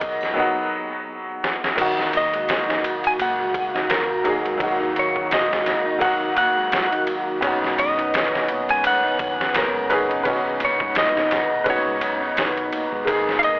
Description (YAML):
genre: trip hop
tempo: 85 BPM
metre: 4/4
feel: swing 57% on 16ths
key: Eb minor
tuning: A4 = 441 Hz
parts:
  - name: clean lap steel guitar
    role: melody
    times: 0.0-13.6 s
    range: Bb4 to Ab5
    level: -22 LUFS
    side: equal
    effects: vintage 12-bit sampler grit, tape echo
  - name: clear upright piano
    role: accompaniment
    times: 0.0-13.6 s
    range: F#3 to B4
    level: -24 LUFS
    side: equal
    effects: harmonic tremolo, tape echo
  - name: warbly tape-like pad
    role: sustained chords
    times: 0.0-13.6 s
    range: Eb3 to Bb4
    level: -28 LUFS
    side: equal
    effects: chorus, built-in reverb
  - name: deep dub fingered electric bass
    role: bass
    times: 0.0-13.6 s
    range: F#1 to Eb2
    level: -42 LUFS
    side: equal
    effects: none
  - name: trip hop sampler-style drum kit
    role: drums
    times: 0.0-13.6 s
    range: crash cymbal, kick drum, ride cymbal, snare drum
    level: -24 LUFS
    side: equal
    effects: none
  - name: mellow electric guitar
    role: arpeggios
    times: 1.8-13.5 s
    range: Bb2 to Eb4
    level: -34 LUFS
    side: equal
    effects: tape echo
room: light reverb, digital ambience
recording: dry, gritty hardware recording, transformer saturation, vinyl crackle, telephone sound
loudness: -18 LUFS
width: side -24 dB against mid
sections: 0.0-1.8 A section; 1.8-13.6 B section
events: drum fill 1.4-1.8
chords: 0.0 B; 1.8 Ebm; 7.4 Badd9; 13.1 Absus2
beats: 0.37 1.07 | 1.78 2.48 3.19 3.90 | 4.60 5.31 6.01 6.72 | 7.42 8.13 8.84 9.54 | 10.25 10.95 11.66 12.37 | 13.07